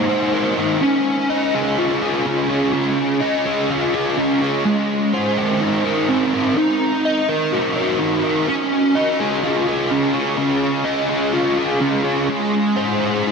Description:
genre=rock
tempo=126 BPM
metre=4/4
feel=straight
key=Db major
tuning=A4 = 441 Hz
part: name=fuzz guitar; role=solo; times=0.0-13.3 s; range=Ab3 to Eb5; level=-16 LUFS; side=equal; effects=distortion, analog chorus, ping-pong delay
room=wet huge ambient reverb, RT60 7.5 s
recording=dreamy mix soaked in reverb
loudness=-16 LUFS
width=side -5 dB against mid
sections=0.8-13.3 A section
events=none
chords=0.0 Abadd9 (rootless); 0.8 Dbadd9; 4.7 Abadd9; 6.6 Ebm; 8.5 Dbadd9; 12.3 Ab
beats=0.33 | 0.81 1.30 1.78 2.26 | 2.74 3.22 3.70 4.18 | 4.66 5.13 5.61 6.09 | 6.57 7.04 7.52 8.00 | 8.47 8.95 9.43 9.90 | 10.38 10.86 11.33 11.81 | 12.29 12.76 13.24

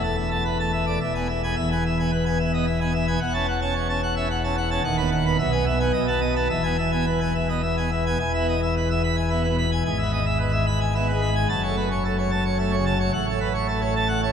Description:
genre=classical, organ toccata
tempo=109 BPM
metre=3/4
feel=straight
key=E major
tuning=A4 = 440 Hz
part: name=pipe organ, plenum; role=solo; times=0.0-14.3 s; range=D#1 to B5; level=-21 LUFS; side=equal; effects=none
room=wet cathedral reverb, RT60 4.5 s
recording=minimal, uncompressed stereo recording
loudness=-21 LUFS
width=side -7 dB against mid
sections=0.0-8.2 A section; 8.2-14.3 B section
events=none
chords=0.0 Esus4; 1.0 E; 3.2 F#m7/E; 4.8 B/D#; 5.4 E/B; 5.9 B7; 6.5 E; 9.8 E/G#; 11.5 F#m; 13.1 F#m/A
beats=0.45 1.00 | 1.56 2.11 2.66 | 3.21 3.75 4.29 | 4.83 5.38 5.93 | 6.50 7.07 7.63 | 8.19 8.75 9.30 | 9.85 10.40 10.95 | 11.49 12.04 12.59 | 13.14 13.68 14.22

